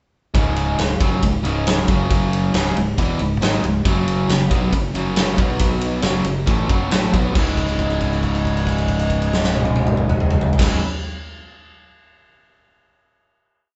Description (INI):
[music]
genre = classic rock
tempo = 137 BPM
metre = 4/4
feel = straight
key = C# minor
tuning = A4 = 440 Hz
[part]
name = biting overdriven guitar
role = riff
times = 0.3-10.8 s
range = C#2 to E4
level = -26 LUFS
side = equal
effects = none
[part]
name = sludgy distorted guitar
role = riff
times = 0.3-10.8 s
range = C#2 to B3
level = -26 LUFS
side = equal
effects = overdrive
[part]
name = growling fingered electric bass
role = bass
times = 0.3-10.8 s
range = C#1 to B1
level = -28 LUFS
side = equal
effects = overdrive
[part]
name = huge arena drum kit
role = drums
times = 0.3-10.7 s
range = crash cymbal, kick drum, ride cymbal, snare drum, toms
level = -22 LUFS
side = equal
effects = none
[sound]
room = moderate large studio reverb, RT60 0.9 s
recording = band playing live in one room, nothing above 8.0 kHz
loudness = -19 LUFS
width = mono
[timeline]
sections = 0.3-7.4 riff; 7.4-10.9 final chord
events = held note 7.4-10.6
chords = 0.3 C#5; 1.9 F#5; 2.5 C#m; 3.9 F#5; 5.4 B5; 6.0 F#5; 7.4 C#m